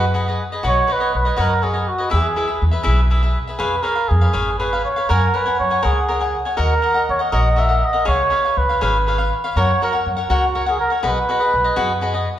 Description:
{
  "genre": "mexican folk, mariachi",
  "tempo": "81 BPM (dotted quarters)",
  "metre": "6/8",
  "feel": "straight",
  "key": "B major",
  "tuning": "A4 = 440 Hz",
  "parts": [
    { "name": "trumpet with cup mute", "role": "melody", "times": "0.0-12.0 s", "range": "F#4 to E5", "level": "-19 LUFS", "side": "right 1 dB", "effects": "none" },
    { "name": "cavaquinho", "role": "accompaniment", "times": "0.0-12.3 s", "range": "E4 to G#5", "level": "-21 LUFS", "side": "left 2 dB", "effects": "none" },
    { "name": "upright bass", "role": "bass", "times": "0.0-12.3 s", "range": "G#1 to F#2", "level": "-20 LUFS", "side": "equal", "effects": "none" }
  ],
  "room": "wet recital hall reverb, RT60 1.6 s",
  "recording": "recorded in a church or concert hall",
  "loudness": "-16 LUFS",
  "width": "side -11 dB against mid",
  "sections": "0.6-12.4 A section",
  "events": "none",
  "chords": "0.0 B6; 0.6 Badd9; 2.1 E; 3.6 C#7/E#; 5.1 F#add9; 6.6 D#m; 8.1 C#7; 9.5 F#; 11.0 B6"
}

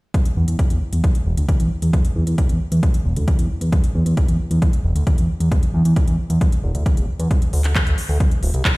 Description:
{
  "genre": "uplifting trance",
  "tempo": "134 BPM",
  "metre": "4/4",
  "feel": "straight",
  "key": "unclear",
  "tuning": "A4 = 440 Hz",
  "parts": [
    { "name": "electronic kick drum", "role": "drums", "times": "0.1-8.7 s", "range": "none", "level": "-17 LUFS", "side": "equal", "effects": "small room ambience" },
    { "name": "techno drum kit", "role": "drums", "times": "0.1-8.7 s", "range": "handclaps, hi-hat", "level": "-28 LUFS", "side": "equal", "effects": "small room ambience" },
    { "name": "fat analog bass", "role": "bass", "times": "0.4-8.6 s", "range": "D1 to E2", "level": "-18 LUFS", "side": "equal", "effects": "sidechain pumping" }
  ],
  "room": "digital ambience",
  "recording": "played on a big sound system in a bare room, stone room reverb",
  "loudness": "-16 LUFS",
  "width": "side -23 dB against mid",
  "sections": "0.1-8.8 A section",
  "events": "none",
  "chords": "none"
}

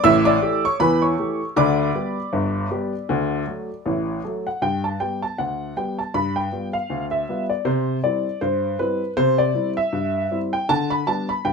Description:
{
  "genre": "ragtime piano",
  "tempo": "79 BPM",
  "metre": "2/4",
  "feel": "swing 57% on 16ths",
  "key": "G major",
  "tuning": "A4 = 440 Hz",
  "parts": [
    { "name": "warm upright piano", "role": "solo", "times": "0.0-11.5 s", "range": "G1 to E6", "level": "-19 LUFS", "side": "equal", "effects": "none" }
  ],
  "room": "light reverb",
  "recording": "minimal, uncompressed stereo recording",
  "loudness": "-20 LUFS",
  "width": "side -5 dB against mid",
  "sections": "0.0-4.6 A section; 4.6-11.5 B section",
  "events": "none",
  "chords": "0.0 A7; 1.6 G/D; 3.1 D; 4.6 G; 6.1 G7; 7.7 C; 10.7 G/D"
}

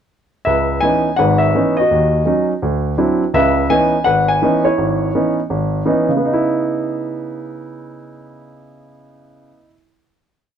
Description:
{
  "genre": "solo jazz",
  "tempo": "168 BPM",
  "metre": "4/4",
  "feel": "swing 66% on 8ths",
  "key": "C# minor",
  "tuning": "A4 = 436 Hz",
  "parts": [
    { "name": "warm grand piano", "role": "solo", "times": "0.4-9.7 s", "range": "G#1 to G#5", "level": "-14 LUFS", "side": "equal", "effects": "none" }
  ],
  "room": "light reverb",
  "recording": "close, detailed microphones",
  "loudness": "-14 LUFS",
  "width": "side -8 dB against mid",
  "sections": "0.5-6.2 A section; 6.2-9.1 final chord",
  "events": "none",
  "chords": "0.5 C#m9; 1.9 D#m7; 2.6 D9; 3.3 C#m9"
}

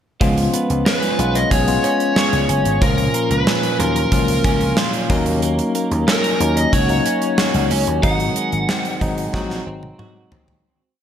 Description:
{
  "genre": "1980s-style pop",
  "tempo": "92 BPM",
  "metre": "4/4",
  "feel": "straight",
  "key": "unclear",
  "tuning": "A4 = 440 Hz",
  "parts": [
    { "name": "bell-like tine electric piano", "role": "accompaniment", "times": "0.2-10.7 s", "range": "A#2 to E#4", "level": "-21 LUFS", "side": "left 3 dB", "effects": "medium stereo tremolo" },
    { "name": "twelve-string electric guitar", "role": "riff", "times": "0.2-11.0 s", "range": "D#3 to G#4", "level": "-25 LUFS", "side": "right 5 dB", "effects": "analog chorus" },
    { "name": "vintage slap bass", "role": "bass", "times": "0.2-10.6 s", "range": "F#1 to D#2", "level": "-21 LUFS", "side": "equal", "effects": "none" },
    { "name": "gated 80s drum kit", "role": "drums", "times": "0.2-10.6 s", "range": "hi-hat, kick drum, snare drum, toms", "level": "-20 LUFS", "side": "right 1 dB", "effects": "none" },
    { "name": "lead guitar through a small cranked amp", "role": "melody", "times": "0.9-10.0 s", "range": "A#4 to F#5", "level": "-21 LUFS", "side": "left 1 dB", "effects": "overdrive, digital delay" }
  ],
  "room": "light reverb, small room ambience",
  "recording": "none",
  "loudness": "-15 LUFS",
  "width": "side -9 dB against mid",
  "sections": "0.2-10.6 verse",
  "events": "fade-out 8.0-10.6; drum fill 9.3-10.6",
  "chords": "0.2 C#7; 2.8 F#maj7/C#; 5.1 D#m7; 8.0 G#7"
}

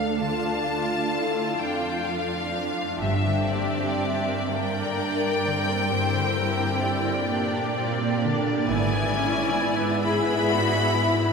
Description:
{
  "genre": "classical, slow romantic movement for symphony orchestra",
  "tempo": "38-45 BPM (dotted quarters)",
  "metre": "12/8",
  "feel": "rubato",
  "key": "unclear",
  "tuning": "A4 = 441 Hz",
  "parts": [
    { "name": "clear symphonic violin section", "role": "melody", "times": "0.0-11.3 s", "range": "D5 to B5", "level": "-28 LUFS", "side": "left 3 dB", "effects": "none" },
    { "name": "warm symphonic violin section", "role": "second line", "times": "0.0-11.3 s", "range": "E4 to F5", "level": "-28 LUFS", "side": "left 2 dB", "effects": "none" },
    { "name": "warm symphonic viola section", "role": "accompaniment", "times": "0.0-11.3 s", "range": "Bb3 to F4", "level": "-29 LUFS", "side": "right 2 dB", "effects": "none" },
    { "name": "concert harp", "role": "arpeggios", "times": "0.0-11.3 s", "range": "G2 to D6", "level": "-31 LUFS", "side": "left 6 dB", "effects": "none" },
    { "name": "rich symphonic cello section", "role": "bass", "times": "0.0-11.3 s", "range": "D2 to Bb2", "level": "-29 LUFS", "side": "right 4 dB", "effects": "none" },
    { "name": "rich symphonic double bass section", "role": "bass", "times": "3.0-9.5 s", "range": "G1 to G#1", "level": "-36 LUFS", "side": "right 4 dB", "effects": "none" }
  ],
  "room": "wet cathedral reverb, RT60 5.1 s",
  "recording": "none",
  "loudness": "-22 LUFS",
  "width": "side -5 dB against mid",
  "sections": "0.0-11.3 A section",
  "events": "none",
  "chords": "0.0 Dm; 3.0 Gm; 8.7 E7/G#"
}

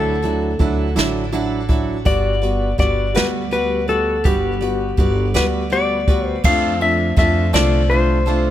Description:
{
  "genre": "six-eight pop ballad",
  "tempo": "55 BPM (dotted quarters)",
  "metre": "6/8",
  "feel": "straight",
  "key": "G major",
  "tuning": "A4 = 438 Hz",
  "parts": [
    { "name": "clean lap steel guitar", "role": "melody", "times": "0.0-8.5 s", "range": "G4 to F5", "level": "-20 LUFS", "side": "left 4 dB", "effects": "none" },
    { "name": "warm concert grand piano", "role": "accompaniment", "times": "0.0-8.5 s", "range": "F#3 to F#4", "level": "-22 LUFS", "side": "equal", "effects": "none" },
    { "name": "picked steel-string acoustic guitar", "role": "arpeggios", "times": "0.0-8.5 s", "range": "D3 to D5", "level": "-27 LUFS", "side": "right 7 dB", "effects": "ping-pong delay" },
    { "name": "upright bass", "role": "bass", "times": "0.0-8.5 s", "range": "G1 to F2", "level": "-22 LUFS", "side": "equal", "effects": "none" },
    { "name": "jazz brush drum kit", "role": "drums", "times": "0.2-8.4 s", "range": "crash cymbal, hi-hat, kick drum, ride cymbal, snare drum", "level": "-20 LUFS", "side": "right 1 dB", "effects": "none" }
  ],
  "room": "small room ambience",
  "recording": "none",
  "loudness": "-15 LUFS",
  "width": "side -12 dB against mid",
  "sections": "0.0-6.4 A section; 6.4-8.5 B section",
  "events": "none",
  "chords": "0.0 Dadd9; 2.1 Gmaj7; 6.4 F6"
}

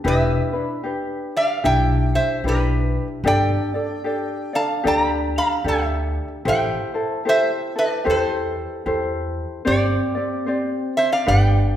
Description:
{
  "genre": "Hawaiian",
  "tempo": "75 BPM",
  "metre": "4/4",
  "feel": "swing 62% on 8ths",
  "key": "unclear",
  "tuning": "A4 = 443 Hz",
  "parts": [
    { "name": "ukulele", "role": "accompaniment", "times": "0.0-11.8 s", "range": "C4 to D5", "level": "-23 LUFS", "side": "left 1 dB", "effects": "none" },
    { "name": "upright bass", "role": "bass", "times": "0.0-11.8 s", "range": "E1 to E2", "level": "-22 LUFS", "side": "equal", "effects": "none" },
    { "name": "lap resonator guitar", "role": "melody", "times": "0.1-11.8 s", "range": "G4 to B5", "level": "-22 LUFS", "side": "right 1 dB", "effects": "none" }
  ],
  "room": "wet recital hall reverb, RT60 1.5 s",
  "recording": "recorded in a church or concert hall",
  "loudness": "-18 LUFS",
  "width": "side -11 dB against mid",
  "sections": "0.0-11.8 A section",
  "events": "none",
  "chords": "0.0 Em7; 3.2 Gsus2; 6.5 Am7; 9.7 Gsus4"
}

